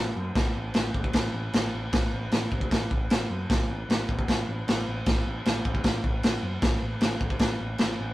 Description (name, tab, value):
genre	garage rock duo or trio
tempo	154 BPM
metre	4/4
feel	straight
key	unclear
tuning	A4 = 443 Hz
part	growling picked electric bass	bass	0.0-8.1 s	A1 to F#2	-33 LUFS	equal	overdrive
part	raw garage drum kit	drums	0.4-7.9 s	crash cymbal, kick drum, snare drum	-25 LUFS	equal	none
room	light reverb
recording	rough rehearsal-room recording, warm saturation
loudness	-24 LUFS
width	side -16 dB against mid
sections	0.0-8.1 A section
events	none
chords	none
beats	| 0.36 0.75 1.15 1.54 | 1.93 2.33 2.72 3.11 | 3.50 3.89 4.29 4.68 | 5.07 5.46 5.84 6.24 | 6.62 7.01 7.40 7.79